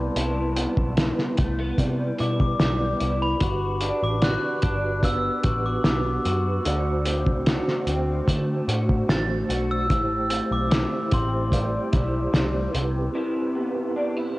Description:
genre	indie pop, bedroom pop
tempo	74 BPM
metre	4/4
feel	straight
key	G major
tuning	A4 = 440 Hz
part	electric guitar through a small old amp	accompaniment	0.0-14.4 s	A2 to F#4	-29 LUFS	left 1 dB	ensemble chorus, vibrato effect, cassette tape
part	mellow tonewheel organ	accompaniment	0.0-14.4 s	G3 to C5	-29 LUFS	right 2 dB	chorus vibrato, fast rotary speaker, cassette tape
part	vintage muted picked electric bass	bass	0.0-13.1 s	G1 to D3	-27 LUFS	equal	none
part	cloth-damped thuddy drum kit	drums	0.2-12.9 s	hi-hat, kick drum, snare drum	-24 LUFS	equal	none
part	glockenspiel with soft plastic mallets	melody	2.2-11.9 s	B5 to A6	-30 LUFS	left 1 dB	wide subtle chorus, cassette tape
room	light reverb, small room ambience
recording	home recording on cassette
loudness	-21 LUFS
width	side -19 dB against mid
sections	0.0-14.4 A section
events	break 13.2-14.4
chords	0.0 Cmaj7; 3.4 Gmaj7; 6.7 D7; 9.9 Am7; 12.7 Cmaj7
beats	| 0.16 0.98 1.79 2.60 | 3.41 4.22 5.04 5.85 | 6.66 7.47 8.28 9.09 | 9.90 10.72 11.53 12.34 | 13.15 13.96

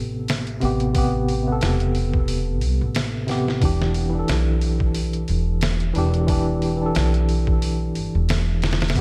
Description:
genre	trip hop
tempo	90 BPM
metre	4/4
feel	swing 56% on 16ths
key	unclear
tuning	A4 = 436 Hz
part	tine electric piano	accompaniment	0.0-9.0 s	C3 to A4	-26 LUFS	equal	tremolo, tape echo
part	upright bass	bass	0.0-9.0 s	E1 to C2	-25 LUFS	equal	none
part	trip hop sampler-style drum kit	drums	0.3-9.0 s	hi-hat, kick drum, snare drum	-27 LUFS	equal	none
room	light reverb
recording	none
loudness	-21 LUFS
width	mono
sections	0.0-9.0 A section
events	none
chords	0.0 Am9; 3.6 Em7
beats	0.28 | 0.95 1.62 2.28 2.95 | 3.62 4.28 4.95 5.62 | 6.28 6.95 7.62 8.28 | 8.95

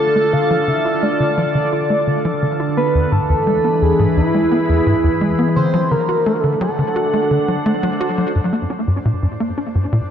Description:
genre	ambient, sequencer-driven space music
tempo	86 BPM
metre	4/4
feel	straight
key	unclear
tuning	A4 = 439 Hz
part	pulse-width lead	melody	0.0-8.0 s	E4 to F5	-19 LUFS	right 1 dB	chorus, tape echo
part	evolving wavetable pad	sustained chords	0.0-10.1 s	D3 to B5	-20 LUFS	equal	chorus, built-in reverb
part	tight sequencer bass	riff	0.0-10.0 s	E2 to F#4	-19 LUFS	equal	wide subtle chorus, tape echo
part	bubbling stepped-filter texture	texture	8.8-10.1 s	D4 to D5	-40 LUFS	left 2 dB	chorus, built-in reverb
room	wet lush hall reverb, RT60 2.5 s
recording	dreamy mix soaked in reverb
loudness	-14 LUFS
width	side -8 dB against mid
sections	0.0-8.4 A section; 8.4-10.1 B section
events	filter sweep on analog synth bass 0.0-8.4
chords	0.0 Dm; 2.8 E; 5.6 D7; 8.4 Gm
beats	0.68 1.38 2.08 | 2.77 3.47 4.17 4.87 | 5.56 6.26 6.96 7.66 | 8.36 9.05 9.75

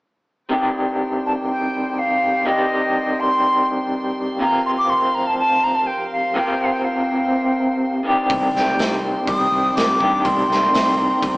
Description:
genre	psychedelic rock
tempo	123 BPM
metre	4/4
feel	straight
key	C minor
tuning	A4 = 439 Hz
part	dark chamber string section	sustained chords	0.5-11.4 s	G4 to C6	-29 LUFS	equal	none
part	electric guitar through a small old amp	riff	0.5-11.4 s	F2 to G4	-20 LUFS	equal	tremolo
part	bright silver concert flute	melody	1.3-11.4 s	Eb5 to Eb6	-19 LUFS	equal	slapback echo
part	fuzz fingered electric bass	bass	8.3-11.4 s	C2 to G2	-27 LUFS	equal	overdrive
part	raw garage drum kit	drums	8.3-11.3 s	hi-hat, kick drum, snare drum	-24 LUFS	equal	none
room	moderate studio reverb, RT60 0.5 s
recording	band playing live in one room, small speaker sound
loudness	-17 LUFS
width	side -23 dB against mid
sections	0.5-11.4 A section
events	none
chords	0.5 Cmadd9; 4.4 Fsus4; 8.1 Cmadd9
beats	| 0.51 0.99 1.48 1.97 | 2.46 2.95 3.43 3.92 | 4.41 4.89 5.38 5.87 | 6.35 6.84 7.32 7.81 | 8.30 8.78 9.27 9.76 | 10.25 10.73 11.22

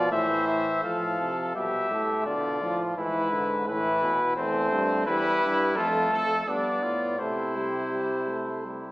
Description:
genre	classical, imitative canzona for brass ensemble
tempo	85 BPM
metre	3/4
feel	straight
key	A minor, C major from 5.1 s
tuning	A4 = 438 Hz
part	warm cornet	melody	0.0-8.9 s	A4 to F5	-28 LUFS	left 2 dB	none
part	warm trumpet	second line	0.0-8.9 s	C4 to C5	-31 LUFS	right 1 dB	none
part	clear trombone	accompaniment	0.0-8.9 s	D3 to B3	-30 LUFS	right 1 dB	none
part	warm euphonium	bass	0.0-8.9 s	E2 to C3	-32 LUFS	equal	none
room	wet recital hall reverb, RT60 1.4 s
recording	recorded in a church or concert hall, small speaker sound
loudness	-24 LUFS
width	side -20 dB against mid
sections	0.8-8.9 A section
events	none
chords	0.1 Am; 0.8 F/A; 2.3 Bdim; 3.0 E/G#; 4.4 Am/E; 5.1 Em; 5.8 F; 6.5 G; 7.2 C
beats	0.12 | 0.84 1.55 2.26 | 2.97 3.67 4.37 | 5.07 5.77 6.47 | 7.19 7.92 8.65

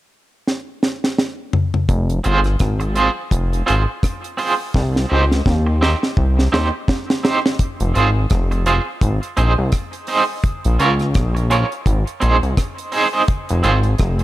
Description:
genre	roots reggae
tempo	84 BPM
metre	4/4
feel	swing 58% on 16ths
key	F minor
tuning	A4 = 442 Hz
part	deep reggae drum kit	drums	0.5-14.2 s	hi-hat, kick drum, rim click, snare drum, toms	-19 LUFS	equal	none
part	chorused synth bass	bass	1.9-14.2 s	F1 to Eb2	-17 LUFS	equal	none
part	electric guitar at the edge of break-up	accompaniment	2.2-14.2 s	C4 to Db5	-20 LUFS	right 3 dB	tremolo, dub echo
room	small room reverb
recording	none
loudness	-16 LUFS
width	side -15 dB against mid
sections	0.0-1.9 A section; 1.9-7.6 B section; 7.6-14.2 C section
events	drum fill 0.5-1.9, 4.7-7.6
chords	0.0 N.C.; 1.9 Fm; 4.7 Cm; 7.6 Fm; 9.0 Ab; 10.4 Bbm; 11.9 Ab; 13.3 Fm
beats	0.46 1.18 | 1.89 2.60 3.32 4.03 | 4.74 5.46 6.17 6.88 | 7.59 8.30 9.02 9.73 | 10.44 11.15 11.86 12.57 | 13.28 13.99

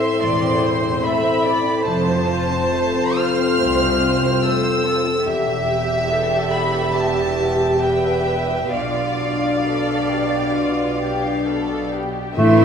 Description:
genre	cinematic, emotional film score for orchestra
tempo	65-73 BPM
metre	4/4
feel	rubato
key	unclear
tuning	A4 = 440 Hz
part	warm symphonic violin section	melody	0.0-12.6 s	E5 to F6	-24 LUFS	left 1 dB	none
part	dark symphonic violin section	second line	0.0-12.6 s	A3 to E5	-26 LUFS	left 1 dB	none
part	dark symphonic viola section	accompaniment	0.0-12.6 s	A3 to E5	-25 LUFS	right 3 dB	none
part	mellow French horn section	sustained chords	0.0-12.6 s	B3 to G4	-22 LUFS	left 3 dB	none
part	concert harp	arpeggios	0.0-12.6 s	E2 to E5	-26 LUFS	left 2 dB	none
part	warm studio double bass section	bass	0.2-12.6 s	E1 to C2	-30 LUFS	right 4 dB	none
part	warm symphonic cello section	bass	0.2-12.6 s	C2 to E3	-28 LUFS	right 3 dB	none
part	mellow flute section	second line	12.4-12.6 s	E5	-19 LUFS	right 3 dB	none
part	warm clarinet	second line	12.4-12.6 s	A3	-19 LUFS	right 2 dB	none
part	timpani	percussion	12.4-12.6 s	A2	-17 LUFS	right 2 dB	none
room	wet scoring stage reverb, RT60 1.8 s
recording	minimal, uncompressed stereo recording, vinyl crackle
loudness	-17 LUFS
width	side -7 dB against mid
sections	0.0-12.4 A section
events	none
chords	0.0 Am; 1.9 F; 5.3 Em; 8.7 Bdim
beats	0.22 1.04 | 1.87 2.73 3.60 4.43 | 5.27 6.10 6.93 7.81 | 8.72 9.65 10.57 11.47 | 12.37

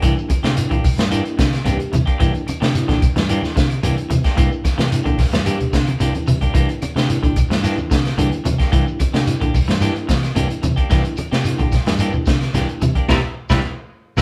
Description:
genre	afrobeat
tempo	110 BPM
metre	4/4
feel	straight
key	C mixolydian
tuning	A4 = 440 Hz
part	mellow reed electric piano	accompaniment	0.0-14.2 s	G3 to G4	-29 LUFS	equal	fast tremolo
part	electric guitar at the edge of break-up	arpeggios	0.0-14.2 s	C3 to G3	-27 LUFS	equal	none
part	clean electric guitar	stabs	0.0-14.2 s	E3 to G4	-29 LUFS	equal	none
part	fingered electric bass	bass	0.0-14.2 s	Bb1 to C3	-24 LUFS	equal	none
part	crunchy breakbeat drum kit	drums	0.0-14.2 s	hi-hat, kick drum, snare drum	-22 LUFS	equal	none
part	congas	percussion	0.0-14.2 s	none	-26 LUFS	equal	none
part	shekere	percussion	0.0-14.2 s	none	-29 LUFS	equal	none
part	claves	percussion	0.3-14.2 s	none	-40 LUFS	equal	none
room	wet studio reverb, RT60 0.5 s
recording	band playing live in one room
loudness	-18 LUFS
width	mono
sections	0.0-14.2 A section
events	drum fill 5.9-6.5; band accent 13.1-14.2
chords	0.0 C9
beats	| 0.03 0.57 1.12 1.66 | 2.20 2.75 3.29 3.83 | 4.37 4.92 5.46 6.00 | 6.55 7.09 7.64 8.18 | 8.73 9.27 9.82 10.36 | 10.91 11.45 12.00 12.54 | 13.09 13.63 14.18

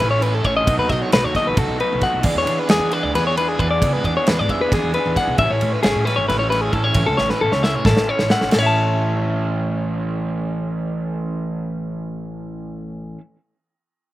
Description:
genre	math rock and midwest emo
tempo	267 BPM (eighths)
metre	7/8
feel	straight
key	A major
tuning	A4 = 440 Hz
part	clean electric guitar	arpeggios	0.0-13.2 s	G#4 to A5	-20 LUFS	left 2 dB	slapback echo
part	raw garage guitar	riff	0.0-13.2 s	A2 to G#4	-24 LUFS	right 3 dB	overdrive, slapback echo
part	upright bass	bass	0.0-13.1 s	G#1 to E3	-24 LUFS	equal	none
part	modern studio drum kit	drums	0.0-8.6 s	crash cymbal, kick drum, ride cymbal, snare drum	-22 LUFS	right 1 dB	none
room	little or no reverb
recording	recorded outdoors, with no room sound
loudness	-17 LUFS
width	side -15 dB against mid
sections	0.0-8.5 A section; 8.5-11.7 B section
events	drum fill 7.2-8.5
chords	0.0 A; 0.7 B7; 2.2 E7; 5.4 Amaj7; 7.0 A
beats	0.00 0.22 0.45 | 0.67 0.90 1.12 1.35 1.57 1.80 2.02 | 2.25 2.47 2.70 2.92 3.15 3.37 3.60 | 3.82 4.05 4.27 4.50 4.72 4.95 5.17 | 5.39 5.62 5.84 6.07 6.29 6.52 6.74 | 6.97 7.19 7.42 7.64 7.87 8.09 8.31 | 8.54 8.76 8.99 9.21 9.44 9.66 9.88 | 10.11 10.33 10.56 10.78 11.01 11.23 11.46

